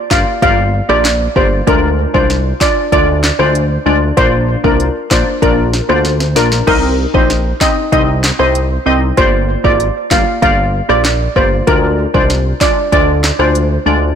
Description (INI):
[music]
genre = dancehall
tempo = 96 BPM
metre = 4/4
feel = straight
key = unclear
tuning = A4 = 440 Hz
[part]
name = steel pan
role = melody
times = 0.1-13.5 s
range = Bb4 to F5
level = -15 LUFS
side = equal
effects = digital delay
[part]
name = glassy wavetable pluck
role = accompaniment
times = 0.1-14.0 s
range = Ab3 to Eb5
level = -16 LUFS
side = left 2 dB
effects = chorus
[part]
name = fat analog bass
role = bass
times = 0.1-14.1 s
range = G1 to D2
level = -16 LUFS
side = equal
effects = none
[part]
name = afro-pop drum kit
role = drums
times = 0.1-13.7 s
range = crash cymbal, handclaps, hi-hat, kick drum, rim click, snare drum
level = -16 LUFS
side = equal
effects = none
[sound]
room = light reverb, digital ambience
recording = blown-out, overdriven recording, overdrive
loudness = -10 LUFS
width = side -8 dB against mid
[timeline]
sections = 0.0-14.2 A section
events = drum fill 6.0-6.7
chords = 0.0 Gm7; 1.7 Ddim; 4.2 Bb; 6.7 Cm; 9.2 Gm7; 11.7 Ddim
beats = 0.42 1.05 | 1.67 2.30 2.92 3.55 | 4.17 4.80 5.42 6.05 | 6.67 7.30 7.92 8.55 | 9.17 9.80 10.42 11.05 | 11.67 12.30 12.92 13.55